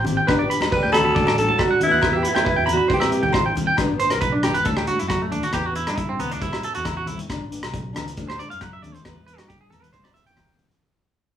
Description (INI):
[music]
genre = highlife guitar band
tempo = 137 BPM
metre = 4/4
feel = straight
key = G major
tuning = A4 = 440 Hz
[part]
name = nylon-string guitar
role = accompaniment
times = 0.0-10.7 s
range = F#3 to G4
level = -30 LUFS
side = left 3 dB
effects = none
[part]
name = semi-hollow electric guitar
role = arpeggios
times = 0.0-10.7 s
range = A3 to B5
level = -23 LUFS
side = right 3 dB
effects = none
[part]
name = fingered electric bass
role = bass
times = 0.0-10.7 s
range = G1 to C3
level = -29 LUFS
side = left 1 dB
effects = none
[part]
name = congas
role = percussion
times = 0.0-10.7 s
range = none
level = -30 LUFS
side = left 2 dB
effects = none
[part]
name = crunchy breakbeat drum kit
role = drums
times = 0.1-10.8 s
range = hi-hat, kick drum, rim click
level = -26 LUFS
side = equal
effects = none
[part]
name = agogo bells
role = percussion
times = 0.3-10.5 s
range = none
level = -32 LUFS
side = left 6 dB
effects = none
[part]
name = growling alto saxophone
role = melody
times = 0.7-3.5 s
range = E4 to B4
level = -20 LUFS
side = right 1 dB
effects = none
[part]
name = warm trombone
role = second line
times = 0.7-3.5 s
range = B2 to G3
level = -30 LUFS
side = left 1 dB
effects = none
[sound]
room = moderate studio reverb, RT60 0.7 s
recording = band playing live in one room, small room ambience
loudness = -18 LUFS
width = side -10 dB against mid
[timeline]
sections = 0.0-3.8 A section; 3.8-10.8 B section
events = fade-out 3.8-10.8; clean electric guitar solo 3.8-10.8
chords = 0.3 G; 1.2 D; 2.0 Em; 2.9 C; 3.8 G; 4.7 D; 5.5 Em; 6.4 C; 7.3 G; 8.2 D; 9.0 Em; 9.9 C